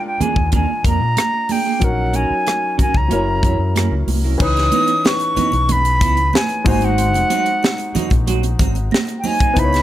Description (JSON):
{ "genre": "lush 1970s-style soul", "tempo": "93 BPM", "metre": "4/4", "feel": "straight", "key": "G# minor", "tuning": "A4 = 441 Hz", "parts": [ { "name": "concert flute", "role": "melody", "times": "0.0-9.8 s", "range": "F#5 to D#6", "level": "-19 LUFS", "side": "equal", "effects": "none" }, { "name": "warm grand piano", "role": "accompaniment", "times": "0.0-9.8 s", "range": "E3 to C#5", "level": "-24 LUFS", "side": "left 3 dB", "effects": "none" }, { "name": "semi-hollow electric guitar", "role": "riff", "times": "0.0-9.5 s", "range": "E3 to C#5", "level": "-25 LUFS", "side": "right 7 dB", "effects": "wide subtle chorus" }, { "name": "overdriven fingered electric bass", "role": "bass", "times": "0.2-9.8 s", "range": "F#1 to A#2", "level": "-19 LUFS", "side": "equal", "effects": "none" }, { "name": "tight funk drum kit", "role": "drums", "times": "0.2-9.8 s", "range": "crash cymbal, hi-hat, kick drum, rim click, snare drum", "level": "-19 LUFS", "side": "equal", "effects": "none" }, { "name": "congas", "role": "percussion", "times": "0.2-9.4 s", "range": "none", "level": "-26 LUFS", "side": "right 6 dB", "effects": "none" }, { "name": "triangle", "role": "percussion", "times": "4.4-9.8 s", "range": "none", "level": "-36 LUFS", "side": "left 8 dB", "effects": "none" }, { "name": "small celesta", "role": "texture", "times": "5.1-9.8 s", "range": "B4 to A#6", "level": "-34 LUFS", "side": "left 6 dB", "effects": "none" } ], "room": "small room ambience", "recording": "none", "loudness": "-14 LUFS", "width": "side -13 dB against mid", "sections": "0.0-4.4 A section; 4.4-9.8 B section", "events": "none", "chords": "0.0 A#7; 1.8 D#m7/A#; 3.1 F#7; 4.4 C#m9; 6.7 G#7", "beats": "0.53 1.17 | 1.82 2.47 3.11 3.76 | 4.40 5.05 5.69 6.34 | 6.98 7.63 8.27 8.92 | 9.56" }